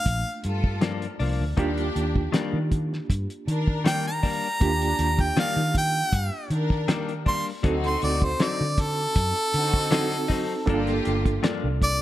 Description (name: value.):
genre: straight-eighth soul blues.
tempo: 79 BPM.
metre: 4/4.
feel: straight.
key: unclear.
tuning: A4 = 440 Hz.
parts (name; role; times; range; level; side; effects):
bright harmonica; melody; 0.0-12.0 s; A4 to C6; -26 LUFS; equal; none.
reed electric piano; accompaniment; 0.0-12.0 s; A3 to A4; -31 LUFS; right 4 dB; fast tremolo.
vintage muted fingered electric bass; bass; 0.1-12.0 s; G1 to Eb3; -27 LUFS; equal; none.
cloth-damped thuddy drum kit; drums; 0.1-12.0 s; hi-hat, kick drum, snare drum; -25 LUFS; equal; none.
clear symphonic string section; sustained chords; 0.4-11.4 s; G3 to Bb4; -35 LUFS; left 2 dB; none.
direct-recorded clean electric guitar; stabs; 0.8-11.7 s; G2 to Eb4; -31 LUFS; left 7 dB; spring reverb.
room: light reverb, small room reverb.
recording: none.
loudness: -22 LUFS.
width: side -14 dB against mid.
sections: 0.0-12.0 A section.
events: harmonica solo 0.0-12.0.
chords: 0.0 Gm7; 1.6 Ebmaj7; 7.6 D7b9; 10.7 Gm7.